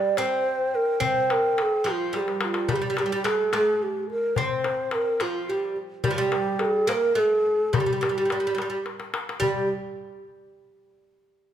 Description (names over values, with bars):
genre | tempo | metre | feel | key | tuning
Arabic maqam ensemble | 71 BPM (dotted quarters) | 6/8 | straight | G maqam bayati | A4 = 439 Hz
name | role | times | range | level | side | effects
breathy mellow ney | melody | 0.0-9.7 s | F4 to D5 | -24 LUFS | right 1 dB | none
oud | second line | 0.0-9.7 s | F3 to C4 | -27 LUFS | right 1 dB | none
darbuka | percussion | 0.2-9.7 s | none | -30 LUFS | left 5 dB | none
room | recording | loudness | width
light reverb | minimal, uncompressed stereo recording | -22 LUFS | side -10 dB against mid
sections
0.0-9.4 A section; 9.4-11.1 B section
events
drum fill 2.1-2.7, 8.9-9.4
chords
none